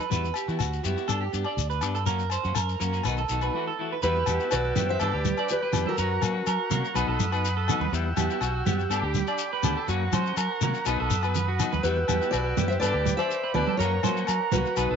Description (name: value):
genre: highlife guitar band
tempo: 123 BPM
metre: 4/4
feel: straight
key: E minor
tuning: A4 = 440 Hz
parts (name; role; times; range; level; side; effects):
- electric guitar at the edge of break-up; arpeggios; 0.0-15.0 s; F#4 to D5; -30 LUFS; right 12 dB; lush chorus, slapback echo
- shekere; percussion; 0.0-14.9 s; none; -32 LUFS; left 7 dB; none
- clean electric guitar; accompaniment; 0.1-15.0 s; D#3 to G4; -34 LUFS; left 12 dB; harmonic tremolo
- fingered electric bass; bass; 0.1-15.0 s; B1 to F#3; -29 LUFS; equal; none
- agogo bells; percussion; 0.3-14.9 s; none; -35 LUFS; left 12 dB; none
- fingerpicked steel-string acoustic guitar; melody; 4.0-6.8, 11.8-15.0 s; F#4 to E5; -28 LUFS; equal; slapback echo
- combo organ; sustained chords; 4.0-15.0 s; F#5 to E6; -35 LUFS; left 1 dB; none
- congas; percussion; 4.8-14.6 s; none; -31 LUFS; right 11 dB; none
room: light reverb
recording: 1960s-style stereo with parts hard left and right, nothing above 7.7 kHz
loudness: -24 LUFS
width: side -7 dB against mid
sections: 0.0-4.0 A section; 4.0-15.0 B section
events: break 3.5-4.0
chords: 0.1 Emadd9; 1.1 G; 2.1 F#; 3.0 B; 3.5 Esus24; 4.0 Emadd9; 5.0 G; 6.0 F#; 7.0 B; 7.9 Emadd9; 8.9 G; 9.9 F#; 10.9 B; 11.8 Emadd9; 12.8 G; 13.8 F#